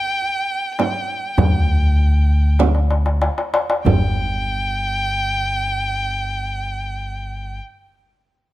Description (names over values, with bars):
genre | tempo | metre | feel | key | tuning
Arabic maqam ensemble | 93-105 BPM (eighths) | 10/8 | straight | unclear | A4 = 440 Hz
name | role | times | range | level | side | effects
rich violin | melody | 0.0-7.6 s | G5 | -23 LUFS | equal | none
darbuka | percussion | 0.2-4.5 s | none | -20 LUFS | left 2 dB | none
frame drum | percussion | 0.8-4.5 s | none | -20 LUFS | right 4 dB | none
upright bass | bass | 1.4-7.6 s | G1 to D2 | -19 LUFS | equal | none
room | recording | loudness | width
light reverb | close, detailed microphones | -17 LUFS | side -15 dB against mid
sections
0.0-3.9 A section; 3.9-8.5 B section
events
slowing down 0.0-3.9; drum fill 2.6-3.9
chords
none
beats
0.21 0.79 1.38 1.98 2.59 3.22 | 3.86 4.50 5.15 5.80 6.45 7.09